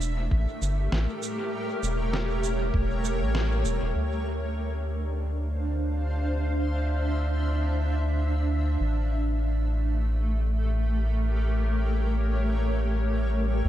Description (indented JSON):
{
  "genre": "ambient dub",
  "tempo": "99 BPM",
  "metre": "4/4",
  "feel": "swing 57% on 16ths",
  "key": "D minor",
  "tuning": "A4 = 440 Hz",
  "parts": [
    { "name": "granular cloud pad", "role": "sustained chords", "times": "0.0-13.7 s", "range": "A3 to F5", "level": "-30 LUFS", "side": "equal", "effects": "built-in reverb" },
    { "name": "round analog bass", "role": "bass", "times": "0.0-13.7 s", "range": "E1 to D2", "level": "-26 LUFS", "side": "equal", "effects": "none" },
    { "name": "electronic shaker and snare drum", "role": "drums", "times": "0.0-3.8 s", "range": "none", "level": "-35 LUFS", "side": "right 1 dB", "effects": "low-pass filter on perc, studio ambience, low-pass filter on snare, dub echo" },
    { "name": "electronic kick drum", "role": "drums", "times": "0.3-2.9 s", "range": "none", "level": "-27 LUFS", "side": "equal", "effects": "studio ambience" }
  ],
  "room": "digital ambience",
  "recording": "none",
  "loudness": "-24 LUFS",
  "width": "side -12 dB against mid",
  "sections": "0.0-4.0 A section; 4.0-13.6 B section",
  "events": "band accent 3.3-3.6",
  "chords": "0.0 A7b9; 4.0 Dm9; 8.8 A7b9"
}